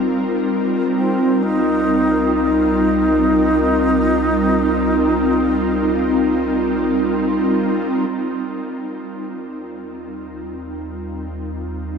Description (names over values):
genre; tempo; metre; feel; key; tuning
ambient; free time; none; none; Eb major; A4 = 440 Hz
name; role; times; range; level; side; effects
ethereal airy pad; sustained chords; 0.0-12.0 s; G3 to Bb4; -18 LUFS; equal; ensemble chorus, built-in reverb
deep rumbling drone; bass; 0.0-12.0 s; Bb1 to Eb2; -30 LUFS; equal; built-in reverb
alto flute; melody; 1.0-7.1 s; C4 to Eb4; -20 LUFS; equal; tape echo
room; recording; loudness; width
wet huge ambient reverb, RT60 7.5 s; dark, warm production; -15 LUFS; side -6 dB against mid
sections
0.0-8.1 A section; 8.1-12.0 B section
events
fade-out on synth drone 0.0-8.1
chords
0.5 Cm7; 8.1 Eb